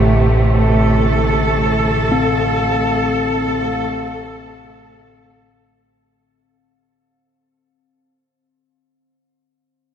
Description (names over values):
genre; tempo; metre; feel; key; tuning
dark ambient drone; free time; none; none; A minor; A4 = 440 Hz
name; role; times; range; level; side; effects
rich studio cello section; sustained chords; 0.0-5.8 s; C3 to A4; -17 LUFS; right 1 dB; shimmer reverb
bronze singing bowl; arpeggios; 0.0-7.7 s; D3 to C4; -22 LUFS; left 4 dB; tape echo, shimmer reverb
analog drone; drone; 0.0-5.9 s; A1 to A2; -18 LUFS; equal; chorus
room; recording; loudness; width
moderate huge ambient reverb, RT60 8.5 s; nothing above 10.8 kHz; -14 LUFS; side -8 dB against mid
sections
0.0-5.8 A section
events
fade-out 0.9-5.8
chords
0.0 Am7